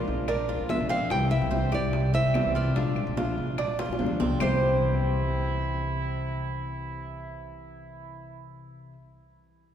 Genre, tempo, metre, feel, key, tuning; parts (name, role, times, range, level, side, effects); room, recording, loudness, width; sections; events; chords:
latin, Cuban son and guajira; 146 BPM; 4/4; straight; C major; A4 = 440 Hz
nylon-string guitar; melody; 0.0-8.9 s; Bb4 to G5; -30 LUFS; right 1 dB
nylon-string guitar; accompaniment; 0.0-9.0 s; C3 to F4; -33 LUFS; left 2 dB
Cuban tres; arpeggios; 0.0-8.9 s; C4 to C5; -34 LUFS; right 4 dB
upright bass; bass; 0.1-8.9 s; Bb1 to D2; -29 LUFS; left 1 dB
congas; percussion; 0.1-4.5 s; -36 LUFS; right 1 dB
bongos; percussion; 0.3-4.5 s; -37 LUFS; left 3 dB
claves; percussion; 0.3-4.5 s; -44 LUFS; left 2 dB
clear trumpet; second line; 4.4-8.5 s; E4; -38 LUFS; right 4 dB
wet cathedral reverb, RT60 4.2 s; recorded in a church or concert hall; -24 LUFS; side -9 dB against mid
0.0-4.4 A section; 4.4-7.7 B section
drum fill 3.8-4.4
0.0 Bb7; 1.1 C; 2.8 Bb7; 4.4 C